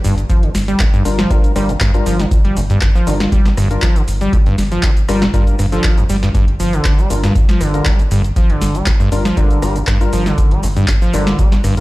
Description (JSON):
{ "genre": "acid house", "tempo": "119 BPM", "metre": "4/4", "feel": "straight", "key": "G minor", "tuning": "A4 = 441 Hz", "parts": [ { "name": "acid bass, saw", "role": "riff", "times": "0.0-11.8 s", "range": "F2 to G3", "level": "-18 LUFS", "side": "equal", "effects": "overdrive, analog chorus, sidechain pumping, analog delay" }, { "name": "warm sub bass", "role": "bass", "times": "0.0-11.8 s", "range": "G1", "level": "-19 LUFS", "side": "equal", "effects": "tube saturation, sidechain pumping" }, { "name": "booming analog drum machine", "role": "drums", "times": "0.0-11.8 s", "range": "handclaps, hi-hat, rim click, shaker, snare drum", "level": "-21 LUFS", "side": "equal", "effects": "overdrive" }, { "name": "electronic kick drum", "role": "drums", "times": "0.3-11.5 s", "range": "none", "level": "-14 LUFS", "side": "equal", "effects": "overdrive" }, { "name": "percussive organ stab", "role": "stabs", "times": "1.1-11.8 s", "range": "G3 to Bb4", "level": "-23 LUFS", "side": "left 2 dB", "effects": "analog chorus, analog delay" } ], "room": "light reverb", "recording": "played on a big sound system in a bare room, large studio reverb", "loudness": "-12 LUFS", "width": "side -19 dB against mid", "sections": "0.0-11.8 A section", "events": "none", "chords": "0.0 Gm7" }